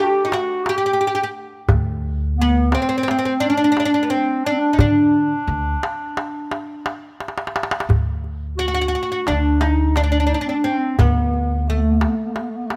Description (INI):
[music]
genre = Turkish makam ensemble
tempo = 174 BPM (eighths)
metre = 9/8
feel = straight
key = D makam hicaz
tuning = A4 = 440 Hz
[part]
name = oud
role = melody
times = 0.0-12.8 s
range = A3 to G4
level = -22 LUFS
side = equal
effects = none
[part]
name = dark clarinet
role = second line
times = 0.0-12.8 s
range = A3 to G4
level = -26 LUFS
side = equal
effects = none
[part]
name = darbuka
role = percussion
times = 0.3-12.8 s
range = none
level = -24 LUFS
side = equal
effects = none
[part]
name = upright bass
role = bass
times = 1.7-12.0 s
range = D2 to D3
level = -23 LUFS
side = equal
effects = none
[sound]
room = light reverb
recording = close, detailed microphones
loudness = -20 LUFS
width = mono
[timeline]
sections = 0.0-7.9 A section; 7.9-12.8 B section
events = drum fill 7.2-7.9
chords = none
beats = 0.31 0.66 1.00 1.35 | 1.69 2.04 2.38 2.72 3.07 3.41 3.76 4.10 4.45 | 4.79 5.13 5.48 5.82 6.17 6.51 6.86 7.20 7.55 | 7.89 8.24 8.58 8.93 9.27 9.62 9.96 10.31 10.65 | 11.00 11.34 11.69 12.03 12.38 12.72